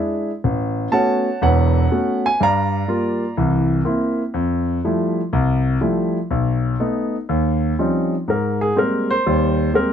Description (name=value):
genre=solo jazz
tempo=122 BPM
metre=4/4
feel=swing 68% on 8ths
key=unclear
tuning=A4 = 440 Hz
part: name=warm grand piano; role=solo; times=0.0-9.9 s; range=E1 to Bb5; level=-17 LUFS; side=equal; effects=none
room=light reverb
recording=close, detailed microphones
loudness=-17 LUFS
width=side -8 dB against mid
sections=0.0-8.3 A section; 8.3-9.9 B section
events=grand piano solo 8.3-9.9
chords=0.4 A69; 2.4 Gm7; 3.4 C7; 4.4 Fmaj9; 6.3 B7; 7.3 D#13; 8.3 Abmaj9